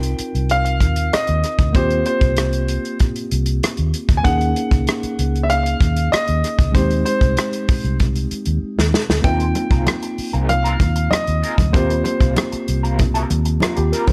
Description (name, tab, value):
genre	lush 1970s-style soul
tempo	96 BPM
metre	4/4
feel	straight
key	Eb major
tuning	A4 = 440 Hz
part	bright baby grand piano	melody	0.0-12.9 s	C5 to Ab5	-25 LUFS	equal	slapback echo
part	tine electric piano	accompaniment	0.0-14.1 s	Ab3 to C5	-27 LUFS	equal	none
part	vintage muted fingered electric bass	bass	0.0-14.1 s	C2 to Eb2	-22 LUFS	equal	none
part	warm soul drum kit	drums	0.0-14.1 s	hi-hat, kick drum, rim click, snare drum	-21 LUFS	equal	none
part	electric guitar through a small old amp	riff	9.2-14.1 s	G3 to C5	-29 LUFS	equal	wah, tremolo
part	congas	percussion	9.2-14.1 s	none	-28 LUFS	equal	none
room	studio ambience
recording	none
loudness	-18 LUFS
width	mono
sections	0.0-14.1 A section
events	drum fill 8.6-9.2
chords	0.0 Cm11; 1.8 Eb69; 4.2 Gb69; 6.7 Abmaj7/C; 9.2 Ab69; 11.7 Eb69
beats	0.50 1.12 | 1.75 2.37 3.00 3.62 | 4.25 4.87 5.50 6.12 | 6.75 7.37 8.00 8.62 | 9.24 9.87 10.49 11.12 | 11.74 12.37 12.99 13.61